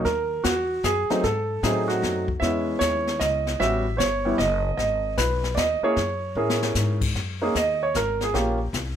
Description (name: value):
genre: jazz piano trio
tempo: 152 BPM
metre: 3/4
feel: swing 65% on 8ths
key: unclear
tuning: A4 = 440 Hz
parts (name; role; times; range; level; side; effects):
- warm grand piano; melody; 0.0-8.6 s; F#3 to E5; -23 LUFS; right 2 dB; none
- upright bass; bass; 0.0-9.0 s; F#1 to A2; -28 LUFS; left 1 dB; none
- jazz brush drum kit; drums; 0.1-9.0 s; brushed snare drum, crash cymbal, hi-hat, kick drum, snare drum; -29 LUFS; left 4 dB; none
room: light reverb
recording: none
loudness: -21 LUFS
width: side -9 dB against mid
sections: 0.0-7.2 A section; 7.2-9.0 B section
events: drum fill 6.4-6.8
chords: 0.1 D#m; 1.2 G#7b9; 2.4 C#m9; 3.6 A13; 4.8 G#m; 6.0 F#7; 7.2 F#6; 8.3 D#9 (rootless)